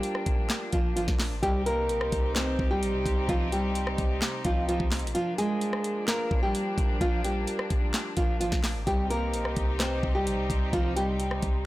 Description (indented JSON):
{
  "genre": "hip hop, trap",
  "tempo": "129 BPM",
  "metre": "4/4",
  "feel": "half-time",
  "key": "C minor",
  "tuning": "A4 = 440 Hz",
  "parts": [
    { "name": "nylon-string guitar", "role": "melody", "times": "0.0-11.7 s", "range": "F3 to C5", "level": "-29 LUFS", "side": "equal", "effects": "tape echo" },
    { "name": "warm studio string section", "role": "sustained chords", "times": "0.0-11.7 s", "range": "C3 to G4", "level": "-35 LUFS", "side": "equal", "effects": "none" },
    { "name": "trap drum kit", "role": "drums", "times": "0.0-11.5 s", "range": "handclaps, hi-hat, kick drum, rim click, snare drum", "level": "-29 LUFS", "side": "equal", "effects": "none" },
    { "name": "clean 808-style bass", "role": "bass", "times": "0.3-11.7 s", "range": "Ab1 to C2", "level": "-31 LUFS", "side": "equal", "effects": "none" }
  ],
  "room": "little or no reverb",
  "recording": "blown-out, overdriven recording, overdrive",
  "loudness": "-25 LUFS",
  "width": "side -17 dB against mid",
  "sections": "0.0-11.7 A section",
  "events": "kick muted 5.1-6.1",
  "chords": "0.0 Bb; 1.4 Cm; 5.1 Bb; 8.9 Cm"
}